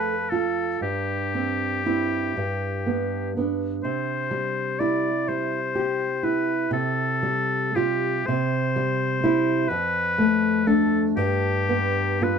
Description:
romantic duo for oboe and classical guitar; 41 BPM (dotted quarters); 6/8; uneven beats, rubato; C major; A4 = 440 Hz
clear oboe; melody; 0.0-12.4 s; G4 to D5; -26 LUFS; left 3 dB
nylon-string guitar; accompaniment; 0.0-12.4 s; F2 to A4; -23 LUFS; right 1 dB
light reverb; dark, warm production; -22 LUFS; side -6 dB against mid
0.0-12.4 A section
0.0 Dm/F (rootless); 0.8 C/G; 2.4 G; 3.8 C; 6.7 Fadd9/C; 8.3 C; 9.7 Dm/F; 11.2 G7

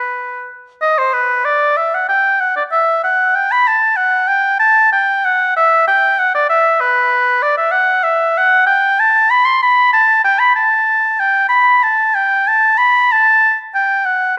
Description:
classical, baroque-style fantasia for unaccompanied oboe; 63 BPM (dotted quarters); 12/8; rubato; E minor; A4 = 442 Hz
clear oboe; solo; 0.0-14.4 s; B4 to C6; -13 LUFS; equal
moderate recital hall reverb, RT60 1.6 s; dark, warm production; -13 LUFS; mono
0.0-14.4 A section

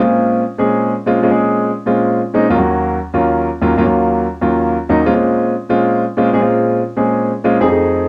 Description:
jazz; 188 BPM; 4/4; straight; Bb minor; A4 = 440 Hz
warm concert grand piano; solo; 0.0-8.1 s; Eb2 to Ab4; -15 LUFS; equal
moderate club reverb, RT60 0.7 s; worn, warbling old tape, cassette tape, warbly pitch drift; -15 LUFS; mono
0.0-8.1 A section
0.0 Bbm7; 2.5 Ebm9; 5.1 Bbm7

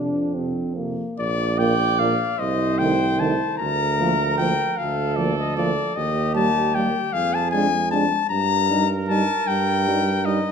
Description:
classical, brass quintet; 51 BPM (dotted quarters); 6/8; rubato; Bb major; A4 = 435 Hz
dark trumpet; second line; 0.0-10.5 s; D4 to D5; -28 LUFS; right 7 dB
mellow trombone; accompaniment; 0.0-10.4 s; Bb2 to Ab3; -28 LUFS; right 5 dB
warm French horn; accompaniment; 0.0-10.4 s; A3 to Eb4; -29 LUFS; left 2 dB
clear tuba; bass; 0.0-10.5 s; Bb1 to G2; -24 LUFS; right 3 dB
mellow trumpet; melody; 1.2-10.5 s; D5 to Bb5; -23 LUFS; left 8 dB
wet recital hall reverb, RT60 1.5 s; dark, warm production; -19 LUFS; side -6 dB against mid
0.0-1.2 A section; 1.2-10.5 B section
0.0 F5; 1.2 Bb; 2.4 Adim/C; 3.6 Bb/D; 6.0 Eb; 7.1 Ddim/F; 8.3 Eb/G

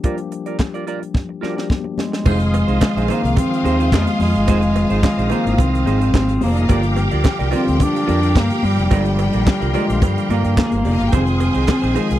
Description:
disco; 108 BPM; 4/4; straight; F dorian; A4 = 440 Hz
semi-hollow electric guitar; accompaniment; 0.0-12.1 s; Eb4 to D5; -26 LUFS; right 8 dB; lush chorus
tine electric piano; accompaniment; 0.0-12.2 s; D3 to G4; -25 LUFS; left 7 dB
tight funk drum kit; drums; 0.0-12.2 s; crash cymbal, handclaps, hi-hat, kick drum, snare drum; -17 LUFS; equal
congas; percussion; 0.0-11.8 s; -26 LUFS; left 5 dB
mellow bass clarinet; melody; 2.0-12.2 s; G3 to D4; -20 LUFS; equal
bright studio string section; second line; 2.3-12.2 s; Ab3 to Ab5; -27 LUFS; left 1 dB
bright tonewheel organ; sustained chords; 2.3-12.2 s; G4 to Eb6; -29 LUFS; equal; chorus vibrato, slow rotary speaker
overdriven fingered electric bass; bass; 2.3-12.2 s; F1 to G2; -20 LUFS; equal
cowbell; percussion; 2.3-12.1 s; -32 LUFS; right 20 dB
light reverb; dry, close 1970s-style studio recording; -15 LUFS; side -13 dB against mid
0.0-2.3 A section; 2.3-12.2 B section
drum fill 1.2-2.3
0.0 Gm7; 2.3 Fm7

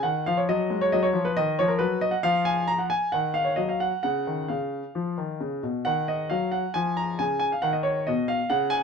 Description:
classical-period piano sonatina; 135 BPM; 4/4; rubato; A4 = 440 Hz
bright concert grand piano; solo; 0.0-8.8 s; B2 to A#5; -23 LUFS; left 1 dB
light reverb; dark, warm production; -23 LUFS; side -6 dB against mid
0.0-8.8 A section
0.5 G#5; 2.2 N.C.; 3.1 D#m; 4.0 C#; 5.9 D#m; 6.8 C#/E#; 7.6 B/D#

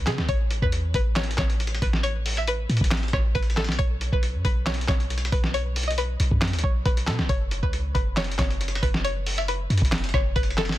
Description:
hip hop, trap; 137 BPM; 4/4; half-time; A4 = 439 Hz
string-like resonator pluck; melody; 0.0-10.8 s; G#4 to E5; -30 LUFS; left 1 dB; chorus, phaser, low-pass filter, ping-pong delay
clean 808-style bass; bass; 0.0-10.8 s; F#1 to C#3; -26 LUFS; equal
lo-fi sampler-style drum kit; drums; 0.1-10.8 s; handclaps, hi-hat, kick drum, rim click, snare drum; -24 LUFS; equal; overdrive
digital ambience; dense, heavily limited modern master; -22 LUFS; side -15 dB against mid
0.0-10.8 A section
0.3 A; 3.8 N.C.; 7.3 F#5

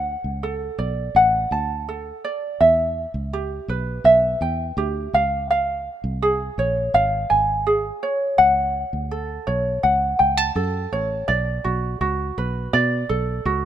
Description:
acoustic pop; 83 BPM; 4/4; straight; A4 = 440 Hz
ukulele; accompaniment; 0.0-13.7 s; F#4 to A5; -20 LUFS; right 1 dB
fingered electric bass; bass; 0.0-13.7 s; G#1 to B2; -26 LUFS; equal
light reverb; -19 LUFS; side -10 dB against mid
0.0-11.3 A section; 11.3-13.7 B section
0.0 D; 2.6 Em; 5.1 C#; 8.4 F#m; 11.3 Bm7

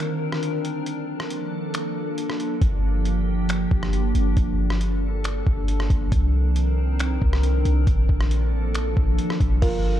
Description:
hip hop, atmospheric cloud-rap; 137 BPM; 4/4; half-time; A4 = 440 Hz
glassy FM pad; sustained chords; 0.0-10.0 s; Eb3 to Bb4; -26 LUFS; equal; ensemble chorus, built-in reverb, sidechain pumping
trip hop sampler-style drum kit; drums; 0.0-9.7 s; crash cymbal, finger snaps, hi-hat, kick drum, rim click; -25 LUFS; equal
clean 808-style bass; bass; 2.6-10.0 s; G1 to C2; -21 LUFS; equal
buzzing kalimba; melody; 9.6-10.0 s; Bb4; -27 LUFS; right 3 dB; low-pass filter
soft electric-piano-like synth keys; arpeggios; 9.6-10.0 s; F4; -30 LUFS; right 5 dB; chorus, tremolo, low-pass filter
little or no reverb; dark, warm production; -20 LUFS; side -12 dB against mid
0.0-9.6 A section
break 0.0-2.6
0.0 Cm9; 0.9 Bbmaj7; 2.6 Gm7; 6.1 Cm9; 7.9 Bbmaj7

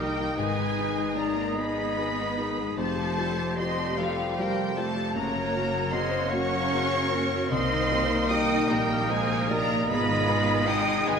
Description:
cinematic; 50 BPM (dotted quarters); 6/8; rubato; A4 = 436 Hz
clear studio violin section; melody; 0.0-11.2 s; F5 to Eb6; -31 LUFS; left 2 dB
clear clarinet; second line; 0.0-11.2 s; G4 to Bb4; -36 LUFS; left 1 dB
hollow concert flute; second line; 0.0-11.2 s; A4 to G5; -33 LUFS; right 1 dB
rich studio violin section; second line; 0.0-11.2 s; F4 to Eb5; -35 LUFS; left 3 dB
warm cor anglais; second line; 0.0-11.2 s; C5 to Eb5; -36 LUFS; right 5 dB
dark baby grand piano; accompaniment; 0.0-11.2 s; C2 to G5; -34 LUFS; left 2 dB
rich studio viola section; accompaniment; 0.0-11.2 s; C3 to Bb4; -33 LUFS; right 1 dB
mellow French horn section; sustained chords; 0.0-11.2 s; Db3 to Eb4; -36 LUFS; left 2 dB
concert harp; arpeggios; 0.0-11.2 s; F2 to Bb5; -34 LUFS; left 9 dB
clear studio double bass section; bass; 0.0-11.2 s; F1 to C2; -35 LUFS; right 4 dB
rich studio cello section; bass; 0.0-11.2 s; F3 to Eb4; -33 LUFS; right 4 dB
wet scoring stage reverb, RT60 1.9 s; -24 LUFS; side -6 dB against mid
0.0-11.2 A section
0.4 Abm; 2.8 Fadd9; 5.2 Gb; 7.5 Cm7; 9.9 Abm

